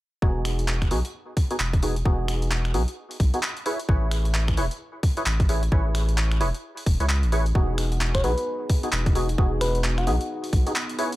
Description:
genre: UK garage, two-step garage.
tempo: 131 BPM.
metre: 4/4.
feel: swing 60% on 16ths.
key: E major.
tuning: A4 = 440 Hz.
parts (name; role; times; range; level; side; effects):
percussive organ stab; stabs; 0.2-11.1 s; B3 to C#5; -29 LUFS; equal; ensemble chorus, tape echo.
saturated sub bass; bass; 0.2-10.6 s; E1 to C#2; -24 LUFS; equal; tube saturation.
electronic kick drum; drums; 0.2-10.6 s; none; -22 LUFS; equal; none.
breakbeat sampler-style drum kit; drums; 0.5-11.2 s; finger snaps, handclaps, hi-hat; -30 LUFS; equal; none.
warm analog pad; sustained chords; 7.6-11.2 s; B3 to G#4; -35 LUFS; equal; chorus, sidechain pumping.
soft struck synth lead; melody; 8.1-10.7 s; F#4 to C#5; -29 LUFS; left 1 dB; chorus, tape echo.
room: digital ambience.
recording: dry, gritty hardware recording.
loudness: -21 LUFS.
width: side -17 dB against mid.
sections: 0.2-11.2 A section.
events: none.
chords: 0.2 Emaj9; 3.7 Amaj9; 7.6 Emaj9.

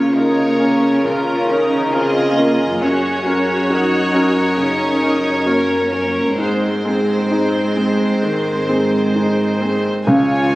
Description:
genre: cinematic.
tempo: 65-69 BPM.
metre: 4/4.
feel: rubato.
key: unclear.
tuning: A4 = 439 Hz.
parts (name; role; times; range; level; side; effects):
rich studio violin section; second line; 0.0-10.6 s; Gb4 to Eb5; -21 LUFS; equal; none.
clear concert grand piano; accompaniment; 0.0-10.6 s; Db2 to Bb4; -19 LUFS; left 1 dB; none.
warm studio viola section; accompaniment; 0.0-10.6 s; Ab3 to Gb4; -20 LUFS; equal; none.
warm studio cello section; bass; 0.0-10.6 s; Gb2 to Db3; -20 LUFS; right 1 dB; none.
dark studio violin section; melody; 10.1-10.6 s; Ab5; -25 LUFS; equal; none.
bright oboe; second line; 10.1-10.6 s; Db5; -25 LUFS; right 1 dB; none.
mellow hollow silver concert flute; second line; 10.1-10.6 s; F5; -25 LUFS; equal; none.
dark French horn section; sustained chords; 10.1-10.6 s; Db4 to F4; -24 LUFS; left 1 dB; none.
warm symphonic double bass section; bass; 10.1-10.6 s; Db2; -28 LUFS; right 2 dB; none.
timpani; percussion; 10.1-10.6 s; Db3; -18 LUFS; right 1 dB; none.
room: moderate concert hall reverb, RT60 2.2 s.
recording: recorded on a phone in the room, studio ambience, compression.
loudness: -14 LUFS.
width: side -18 dB against mid.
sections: 0.0-10.1 A section.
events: none.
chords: 0.0 Db; 2.8 Gb; 6.4 Ab.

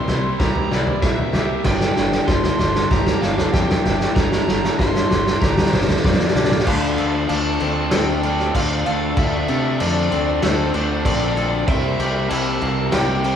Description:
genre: post-rock.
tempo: 96 BPM.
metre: 4/4.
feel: straight.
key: D minor.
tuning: A4 = 441 Hz.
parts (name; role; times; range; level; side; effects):
overdriven slide guitar; melody; 0.0-13.4 s; C5 to C6; -26 LUFS; right 1 dB; none.
pedal steel guitar; sustained chords; 0.0-13.4 s; F4 to C6; -36 LUFS; equal; none.
twangy electric guitar; arpeggios; 0.0-13.4 s; G2 to A4; -27 LUFS; left 3 dB; spring reverb.
overdriven electric guitar; riff; 0.0-13.4 s; G2 to E4; -27 LUFS; right 6 dB; none.
overdriven semi-hollow guitar; riff; 0.0-13.4 s; G2 to D4; -26 LUFS; left 6 dB; none.
growling fingered electric bass; bass; 0.1-13.4 s; G1 to C3; -25 LUFS; equal; overdrive.
loose indie drum kit; drums; 0.1-13.4 s; crash cymbal, kick drum, snare drum, toms; -20 LUFS; equal; none.
room: moderate large studio reverb, RT60 1.4 s.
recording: band playing live in one room.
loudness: -16 LUFS.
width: side -8 dB against mid.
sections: 0.0-6.7 A section; 6.7-13.4 B section.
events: build-up 0.0-6.7; drum fill 0.0-6.7.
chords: 0.0 C7; 1.7 Gm7; 6.7 Dm7; 11.7 C7.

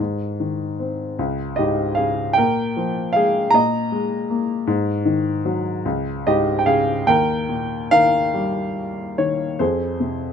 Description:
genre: classical, lyrical solo piano.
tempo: 46-53 BPM (dotted quarters).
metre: 6/8.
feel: rubato.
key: unclear.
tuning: A4 = 436 Hz.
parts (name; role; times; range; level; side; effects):
warm baby grand piano; solo; 0.0-10.3 s; Db2 to Bb5; -18 LUFS; equal; none.
room: light reverb.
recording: close, detailed microphones.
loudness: -18 LUFS.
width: side -7 dB against mid.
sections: 0.0-9.6 A section.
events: none.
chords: 0.0 Ab; 1.2 Db5; 2.4 Bb5; 3.5 Ebsus4/Bb; 4.7 Ab5; 5.8 Db5; 7.1 Eb; 9.6 Fm.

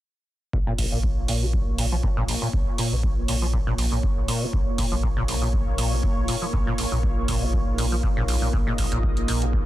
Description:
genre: acid house.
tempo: 120 BPM.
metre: 4/4.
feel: swing 54% on 16ths.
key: Bb minor.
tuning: A4 = 440 Hz.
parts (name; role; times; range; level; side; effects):
lush unison pad; sustained chords; 0.5-9.7 s; Bb3 to Eb5; -31 LUFS; right 1 dB; chorus, sidechain pumping.
acid bass, saw; riff; 0.5-9.5 s; Bb1 to F3; -29 LUFS; equal; overdrive, lush chorus, sidechain pumping, dub echo.
warm sub bass; bass; 0.5-9.6 s; Bb1; -26 LUFS; equal; tube saturation, sidechain pumping.
electronic kick drum; drums; 0.5-9.6 s; none; -25 LUFS; equal; none.
warbly tape-like pad; texture; 0.5-9.7 s; Eb4 to F5; -42 LUFS; left 2 dB; none.
electronic hi-hat; drums; 0.8-9.5 s; none; -30 LUFS; right 3 dB; none.
room: little or no reverb.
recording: dense, heavily limited modern master.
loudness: -21 LUFS.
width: side -15 dB against mid.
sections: 0.5-9.7 A section.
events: filter sweep on acid bass 0.5-9.7.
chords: 0.5 Bbm.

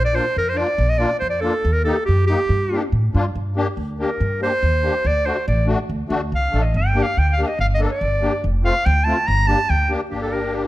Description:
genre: klezmer.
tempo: 142 BPM.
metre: 2/4.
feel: straight.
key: G minor.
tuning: A4 = 440 Hz.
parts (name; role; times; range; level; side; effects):
bright clarinet; melody; 0.0-10.7 s; G4 to Bb5; -21 LUFS; equal; slapback echo.
upright bass; bass; 0.0-10.7 s; F1 to A2; -20 LUFS; equal; none.
musette accordion; accompaniment; 0.1-10.7 s; A3 to A4; -25 LUFS; left 2 dB; none.
room: light reverb.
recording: close, detailed microphones.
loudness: -17 LUFS.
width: side -16 dB against mid.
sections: 0.0-3.4 A section; 3.4-10.1 B section.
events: clarinet solo 3.4-10.1.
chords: 0.0 Bb; 1.6 Eb; 2.5 Gm; 5.1 D; 6.7 Gm; 8.4 F; 9.3 Gm.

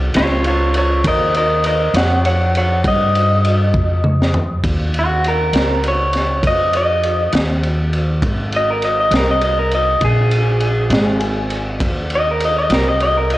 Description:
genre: slow blues.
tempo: 67 BPM (dotted quarters).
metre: 12/8.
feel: straight.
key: unclear.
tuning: A4 = 439 Hz.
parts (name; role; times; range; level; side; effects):
upright bass; bass; 0.0-13.4 s; Ab1 to G2; -18 LUFS; equal; none.
crunchy breakbeat drum kit; drums; 0.1-13.4 s; kick drum, ride cymbal, snare drum, toms; -20 LUFS; equal; cassette tape.
electric guitar through a small old amp; melody; 0.2-13.4 s; F4 to Gb5; -17 LUFS; equal; spring reverb, cassette tape, plate reverb.
room: light reverb.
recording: home recording on cassette.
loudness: -14 LUFS.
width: side -16 dB against mid.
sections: 0.0-4.6 A section; 4.6-13.4 B section.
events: clean electric guitar solo 0.0-4.6; drum fill 3.7-4.6.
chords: 0.0 Eb9; 4.6 Ebsus2; 8.2 Abadd9; 11.8 Eb5.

